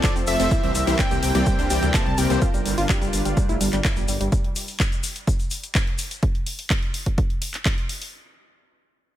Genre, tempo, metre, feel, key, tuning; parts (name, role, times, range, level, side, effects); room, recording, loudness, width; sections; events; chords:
progressive house; 126 BPM; 4/4; straight; A4 = 439 Hz
wide unison lead; melody; 0.0-2.4 s; D5 to A5; -28 LUFS; right 1 dB; sidechain pumping, dub echo
lush unison pad; sustained chords; 0.0-4.3 s; C3 to C5; -31 LUFS; left 1 dB; chorus, sidechain pumping
supersaw stab; stabs; 0.0-2.4 s; E3 to D5; -26 LUFS; left 4 dB; sidechain pumping, dub echo
electronic kick drum; drums; 0.0-7.8 s; -22 LUFS; equal
house drum kit; drums; 0.0-8.1 s; handclaps, hi-hat; -28 LUFS; left 1 dB; sidechain pumping on hats
egg shaker; percussion; 0.0-6.2 s; -34 LUFS; left 4 dB
wide unison pluck; arpeggios; 0.2-4.3 s; G3 to F4; -28 LUFS; right 1 dB; sidechain pumping, dub echo
dark detuned saw bass; bass; 0.2-4.3 s; F1 to D2; -25 LUFS; equal; sidechain pumping
little or no reverb; -20 LUFS; side -12 dB against mid
0.0-8.1 A section
drop 0.0-8.1
0.0 F; 0.5 C7; 2.4 Gm7; 4.3 N.C.